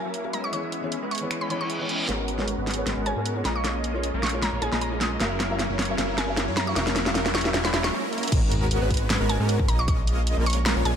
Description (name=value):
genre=future bass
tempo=154 BPM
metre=4/4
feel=swing 54% on 16ths, half-time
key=G# minor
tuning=A4 = 444 Hz
part: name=mallet-like synth pluck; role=melody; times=0.0-10.9 s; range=G#5 to D#6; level=-32 LUFS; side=equal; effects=chorus, sidechain pumping, ping-pong delay
part: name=felt-muted upright piano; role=accompaniment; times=0.0-7.9 s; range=E3 to E5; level=-33 LUFS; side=left 2 dB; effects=sidechain pumping, ping-pong delay
part: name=supersaw chords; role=riff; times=0.0-10.9 s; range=F#3 to E5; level=-29 LUFS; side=equal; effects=analog chorus, sidechain pumping, low-pass filter
part: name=pop drum kit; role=drums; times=0.1-10.9 s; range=crash cymbal, finger snaps, hi-hat, snare drum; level=-28 LUFS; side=equal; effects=studio reverb
part: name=reverse cymbal, riser and sub drop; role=sound effects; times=1.5-9.9 s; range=none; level=-35 LUFS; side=right 1 dB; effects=none
part: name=fat analog bass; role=bass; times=2.1-10.9 s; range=E1 to G#2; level=-28 LUFS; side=equal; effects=sidechain pumping
part: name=airy dreamy lead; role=arpeggios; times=8.3-10.9 s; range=G#4 to D#5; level=-32 LUFS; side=equal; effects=chorus, sidechain pumping
part: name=electronic kick drum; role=drums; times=8.3-10.0 s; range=none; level=-24 LUFS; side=equal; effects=studio reverb
room=light reverb, digital ambience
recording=none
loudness=-22 LUFS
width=side -8 dB against mid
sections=0.0-2.1 A section; 2.1-8.3 B section; 8.3-11.0 C section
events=reverse cymbal 1.5-2.1; build-up 2.1-8.3; drum fill 2.1-7.9, 8.1; filter sweep on supersaw synth 2.1-8.3; filter sweep on synth pluck 2.1-8.3; break 7.9-8.3; drop 8.3-11.0; impact 8.3-9.9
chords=0.0 F#7; 0.5 E6; 2.1 G#m11; 3.5 A#m7; 5.2 F#7; 6.8 F#7/E; 8.3 G#m11; 9.7 A#m7